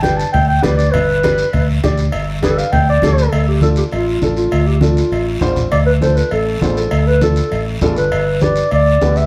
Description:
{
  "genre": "latin, cumbia",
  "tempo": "200 BPM",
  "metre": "4/4",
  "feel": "straight",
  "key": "D dorian",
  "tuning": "A4 = 440 Hz",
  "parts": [
    { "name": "dark clarinet", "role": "melody", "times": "0.0-9.3 s", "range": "F4 to A5", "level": "-19 LUFS", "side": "equal", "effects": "none" },
    { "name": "dark upright piano", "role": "accompaniment", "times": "0.0-9.2 s", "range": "D4 to D5", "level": "-23 LUFS", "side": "equal", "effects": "none" },
    { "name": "fingered electric bass", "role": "bass", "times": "0.0-9.3 s", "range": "G1 to D2", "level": "-19 LUFS", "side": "equal", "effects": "none" },
    { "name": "congas", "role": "percussion", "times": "0.0-9.2 s", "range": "none", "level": "-23 LUFS", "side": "equal", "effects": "none" },
    { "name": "cowbell and timbales", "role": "percussion", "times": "0.0-9.2 s", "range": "none", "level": "-28 LUFS", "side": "equal", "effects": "none" },
    { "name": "guiro", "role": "percussion", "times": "0.0-9.3 s", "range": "none", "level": "-34 LUFS", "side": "equal", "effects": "none" }
  ],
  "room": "moderate studio reverb, RT60 0.8 s",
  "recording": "heard from further back in the room",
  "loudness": "-15 LUFS",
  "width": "mono",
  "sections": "0.0-3.3 A section; 3.3-9.3 B section",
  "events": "clarinet solo 0.0-3.3",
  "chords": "0.0 G; 3.3 Dm; 8.1 G"
}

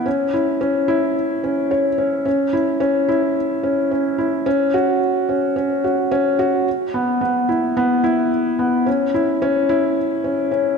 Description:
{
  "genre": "electronica",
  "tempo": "109 BPM",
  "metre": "4/4",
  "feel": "straight",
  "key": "C# minor",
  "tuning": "A4 = 440 Hz",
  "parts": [
    { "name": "felt-muted upright piano", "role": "solo", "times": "0.0-10.8 s", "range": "B3 to C#5", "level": "-16 LUFS", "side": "equal", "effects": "none" }
  ],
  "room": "wet scoring stage reverb, RT60 1.8 s",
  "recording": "dark, warm production",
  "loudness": "-16 LUFS",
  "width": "side -5 dB against mid",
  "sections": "0.0-10.8 A section",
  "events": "none",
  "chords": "none"
}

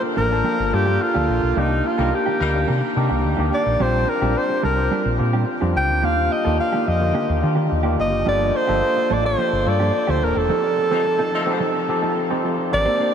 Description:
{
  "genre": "pop",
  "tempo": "108 BPM",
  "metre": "4/4",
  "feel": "straight",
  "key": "unclear",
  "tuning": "A4 = 438 Hz",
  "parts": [
    { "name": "breathy alto saxophone", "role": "melody", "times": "0.0-13.1 s", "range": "Eb4 to G5", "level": "-21 LUFS", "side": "right 1 dB", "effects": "diffuse ambient delay" },
    { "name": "overdriven tine electric piano", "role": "accompaniment", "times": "0.0-13.1 s", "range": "D3 to A5", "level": "-24 LUFS", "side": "left 2 dB", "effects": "wide subtle chorus" },
    { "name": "mellow electric guitar", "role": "riff", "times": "0.0-13.1 s", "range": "Eb3 to C5", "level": "-27 LUFS", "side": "right 4 dB", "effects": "wide subtle chorus" },
    { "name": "hollow-body short-scale fingered electric bass", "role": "bass", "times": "0.2-12.8 s", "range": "Eb1 to Eb3", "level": "-22 LUFS", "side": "equal", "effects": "none" },
    { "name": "dark horn section", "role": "second line", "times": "2.0-2.6, 10.9-11.6 s", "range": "F3 to Bb4", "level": "-30 LUFS", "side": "left 1 dB", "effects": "none" }
  ],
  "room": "wet huge ambient reverb, RT60 7.6 s",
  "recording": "dreamy mix soaked in reverb",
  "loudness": "-17 LUFS",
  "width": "side -8 dB against mid",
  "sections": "0.0-12.7 A section",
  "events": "band accent 1.6-3.8, 10.5-12.7",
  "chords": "0.0 Gm7; 1.6 Cm9; 3.8 Bb69; 6.0 Ebmaj7; 8.3 Gm7; 10.5 F7"
}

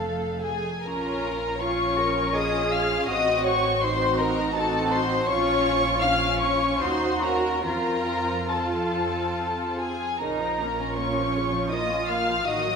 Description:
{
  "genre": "classical, slow romantic movement for string orchestra",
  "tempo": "69-83 BPM",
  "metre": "3/4",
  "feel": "rubato",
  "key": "Bb minor",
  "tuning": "A4 = 440 Hz",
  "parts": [
    { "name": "warm chamber violin section", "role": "melody", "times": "0.0-12.8 s", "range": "F5 to F6", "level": "-27 LUFS", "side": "left 2 dB", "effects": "none" },
    { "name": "warm chamber violin section", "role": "second line", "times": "0.0-12.8 s", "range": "Ab4 to F5", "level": "-27 LUFS", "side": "left 4 dB", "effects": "none" },
    { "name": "warm chamber viola section", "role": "accompaniment", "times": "0.0-12.8 s", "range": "Db3 to A4", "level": "-30 LUFS", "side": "right 2 dB", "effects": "none" },
    { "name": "dark chamber cello section", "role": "bass", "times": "0.0-12.8 s", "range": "F2 to Bb4", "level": "-30 LUFS", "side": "right 2 dB", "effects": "none" },
    { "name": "warm chamber double bass section", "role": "bass", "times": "0.0-12.8 s", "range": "F1 to F2", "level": "-34 LUFS", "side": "right 4 dB", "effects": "none" }
  ],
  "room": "wet scoring stage reverb, RT60 1.6 s",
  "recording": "minimal, uncompressed stereo recording",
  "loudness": "-22 LUFS",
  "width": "side -5 dB against mid",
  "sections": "0.9-12.8 A section",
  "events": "none",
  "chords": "0.0 F; 0.9 Bbm; 3.1 Adim7; 5.3 Bbm; 6.8 Ebm; 7.7 F; 10.2 Bbm"
}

